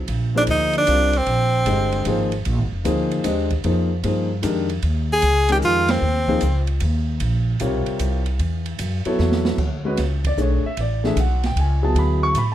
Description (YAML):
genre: modal jazz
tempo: 152 BPM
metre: 3/4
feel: swing 67% on 8ths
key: unclear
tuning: A4 = 440 Hz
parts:
  - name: upright bass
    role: bass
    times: 0.0-12.5 s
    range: F1 to A2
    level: -21 LUFS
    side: equal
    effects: none
  - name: open jazz drum kit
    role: drums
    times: 0.1-12.5 s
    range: crash cymbal, hi-hat, kick drum, ride cymbal, snare drum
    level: -30 LUFS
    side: right 3 dB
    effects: none
  - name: dark concert grand piano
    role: accompaniment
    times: 0.3-12.5 s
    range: C3 to C#6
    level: -23 LUFS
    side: left 2 dB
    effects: none
  - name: bright tenor saxophone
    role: melody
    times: 0.4-2.3, 5.1-6.7 s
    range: C4 to Ab4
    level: -19 LUFS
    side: equal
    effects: plate reverb
room: light reverb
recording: none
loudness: -18 LUFS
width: side -12 dB against mid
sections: 0.1-9.6 A section; 9.6-12.5 B section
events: band accent 5.8; drum fill 9.2-9.6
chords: 0.1 Bb13sus4; 4.8 Eb13sus4; 8.4 Aadd9; 9.6 Dmaj9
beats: | 0.08 0.48 0.87 | 1.27 1.67 2.06 | 2.46 2.85 3.25 | 3.64 4.04 4.44 | 4.83 5.23 5.62 | 6.02 6.42 6.81 | 7.21 7.60 8.00 | 8.39 8.79 9.19 | 9.58 9.98 10.38 | 10.77 11.17 11.56 | 11.96 12.36